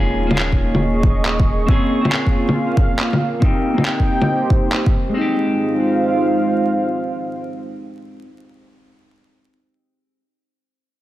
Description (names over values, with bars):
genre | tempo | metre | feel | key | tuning
future garage | 138 BPM | 4/4 | swing 67% on 16ths | F minor | A4 = 440 Hz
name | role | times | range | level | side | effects
clean electric guitar | accompaniment | 0.0-8.4 s | Ab3 to Ab4 | -22 LUFS | left 1 dB | sidechain pumping, low-pass filter, tape echo
dark analog pad | sustained chords | 0.0-8.6 s | Ab3 to Db6 | -21 LUFS | right 2 dB | chorus, sidechain pumping
warm sub bass | bass | 0.0-1.7 s | Eb1 | -23 LUFS | equal | sidechain pumping
electronic bongos and handclaps | drums | 0.3-4.8 s | none | -20 LUFS | left 1 dB | none
electronic kick drum | drums | 0.5-4.9 s | none | -16 LUFS | equal | none
room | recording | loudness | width
light reverb | dense, heavily limited modern master, vinyl crackle | -15 LUFS | side -14 dB against mid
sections
0.0-5.2 A section; 5.2-8.6 B section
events
filter sweep on clean electric guitar 0.0-5.2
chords
0.0 Eb7sus4; 1.7 Bbm7; 3.4 Cm7; 5.2 Fm7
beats
0.38 0.81 1.25 | 1.68 2.12 2.55 2.99 | 3.42 3.86 4.29 4.72 | 5.16 5.59 6.03 6.46 | 6.90 7.33 7.77 8.20